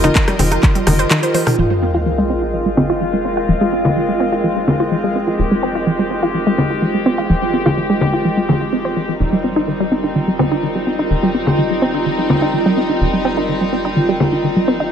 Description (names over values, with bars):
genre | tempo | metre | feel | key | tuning
melodic techno | 126 BPM | 4/4 | straight | F minor | A4 = 438 Hz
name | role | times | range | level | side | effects
warm studio string section | sustained chords | 0.0-14.9 s | F3 to Eb5 | -21 LUFS | left 1 dB | sidechain pumping, low-pass filter
wide unison pluck | arpeggios | 0.0-14.9 s | Eb3 to C5 | -18 LUFS | right 1 dB | sidechain pumping, digital delay
tight sequencer bass | bass | 0.0-14.9 s | F1 | -26 LUFS | equal | sidechain pumping
house drum kit | drums | 0.0-14.3 s | congas, handclaps, hi-hat, rim click, toms | -18 LUFS | left 2 dB | low-pass filter on snare, sidechain pumping on hats, low-pass filter on hats, sidechain pumping on perc, low-pass filter on perc, sidechain pumping on toms, low-pass filter on toms
granular cloud pad | texture | 0.0-14.9 s | F4 to G5 | -21 LUFS | right 2 dB | built-in reverb, sidechain pumping
electronic kick drum | drums | 0.2-0.7 s | none | -14 LUFS | equal | none
sub drop | sound effects | 1.6-3.5 s | none | -22 LUFS | equal | none
room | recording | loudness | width
moderate lush hall reverb, RT60 2.3 s | none | -14 LUFS | side -8 dB against mid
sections
0.0-1.6 A section; 1.6-14.9 B section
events
drum fill 1.3; impact 1.6-3.5; filter sweep on string section 1.6-14.9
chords
0.0 Cm/F; 1.6 Fm; 9.2 Cm/F